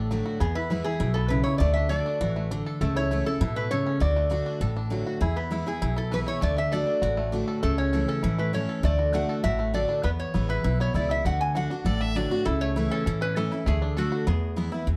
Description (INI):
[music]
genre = bluegrass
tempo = 199 BPM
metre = 4/4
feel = straight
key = unclear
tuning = A4 = 439 Hz
[part]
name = bluegrass banjo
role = melody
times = 0.0-14.9 s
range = E3 to A4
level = -37 LUFS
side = equal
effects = none
[part]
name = lap resonator guitar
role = melody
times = 0.0-14.7 s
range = F#4 to G#5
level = -32 LUFS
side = equal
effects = none
[part]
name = picked steel-string acoustic guitar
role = accompaniment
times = 0.0-15.0 s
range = E2 to F#4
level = -31 LUFS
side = equal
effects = none
[part]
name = upright bass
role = bass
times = 0.0-15.0 s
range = A1 to A2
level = -30 LUFS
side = equal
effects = none
[part]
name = clear fiddle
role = second line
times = 11.8-12.4 s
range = D5 to E5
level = -37 LUFS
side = equal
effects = none
[sound]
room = moderate studio reverb, RT60 0.8 s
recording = dark, warm production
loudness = -26 LUFS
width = mono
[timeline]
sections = 0.0-14.9 A section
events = none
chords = 0.4 E; 1.6 D; 2.8 A/C#; 4.0 D; 5.2 E; 6.4 D; 7.6 A/C#; 8.8 D; 10.0 E; 11.2 D; 12.5 A/C#; 13.7 D; 14.3 E